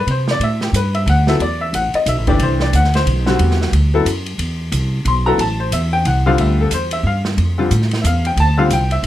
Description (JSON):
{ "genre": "modal jazz", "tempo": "181 BPM", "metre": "3/4", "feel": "swing 62% on 8ths", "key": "A dorian", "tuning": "A4 = 440 Hz", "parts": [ { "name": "bright upright piano", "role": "accompaniment", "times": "0.0-9.0 s", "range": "D3 to C6", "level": "-18 LUFS", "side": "left 2 dB", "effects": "none" }, { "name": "upright bass", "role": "bass", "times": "0.0-9.1 s", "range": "G1 to C3", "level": "-16 LUFS", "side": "equal", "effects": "none" }, { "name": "open jazz drum kit", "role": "drums", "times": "0.1-9.1 s", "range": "hi-hat, kick drum, ride cymbal, snare drum", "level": "-25 LUFS", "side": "right 2 dB", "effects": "none" } ], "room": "light reverb", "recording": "none", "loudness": "-14 LUFS", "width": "side -13 dB against mid", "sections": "0.0-6.4 A section; 6.4-9.1 A section", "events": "none", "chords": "0.0 Am11; 6.4 Dm9" }